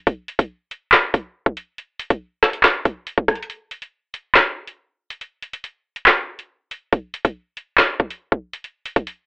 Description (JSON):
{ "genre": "hip hop", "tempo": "140 BPM", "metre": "4/4", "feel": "half-time", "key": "none", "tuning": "none", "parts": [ { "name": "drill drum kit", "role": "drums", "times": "0.1-9.2 s", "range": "handclaps, hi-hat, kick drum, rim click, snare drum", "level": "-15 LUFS", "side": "equal", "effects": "none" } ], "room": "wet small room reverb, RT60 0.5 s", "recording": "telephone sound", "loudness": "-17 LUFS", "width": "side -28 dB against mid", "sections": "0.0-3.5 A section; 3.5-9.3 B section", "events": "none", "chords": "none", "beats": "| 0.07 0.50 0.93 1.35 | 1.78 2.21 2.64 3.07 | 3.50 3.93 4.36 4.78 | 5.21 5.64 6.07 6.50 | 6.93 7.36 7.78 8.21 | 8.64 9.07" }